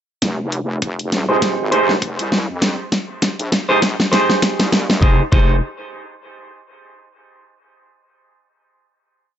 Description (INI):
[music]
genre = glitch hop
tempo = 100 BPM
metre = 4/4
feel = swing 57% on 16ths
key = F minor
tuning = A4 = 441 Hz
[part]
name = wobble bass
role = bass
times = 0.2-5.6 s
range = Eb1 to F2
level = -21 LUFS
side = equal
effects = chorus, tube saturation, high-pass filter
[part]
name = dubstep drum kit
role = drums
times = 0.2-5.0 s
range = hi-hat, snare drum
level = -18 LUFS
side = equal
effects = none
[part]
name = electronic kick drum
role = drums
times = 0.2-5.5 s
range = none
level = -17 LUFS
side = equal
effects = high-pass filter on kick
[part]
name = semi-hollow electric guitar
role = stabs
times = 1.3-5.6 s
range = Eb4 to C5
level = -18 LUFS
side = right 2 dB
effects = sidechain pumping, low-pass filter, dub echo
[sound]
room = light reverb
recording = nothing above 7.9 kHz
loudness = -15 LUFS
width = side -10 dB against mid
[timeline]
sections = 0.2-5.0 build; 5.0-7.4 final chord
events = build-up 0.2-5.0; drum fill 0.2-5.0; filter sweep on clean electric guitar 0.2-5.0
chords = 0.2 Fm9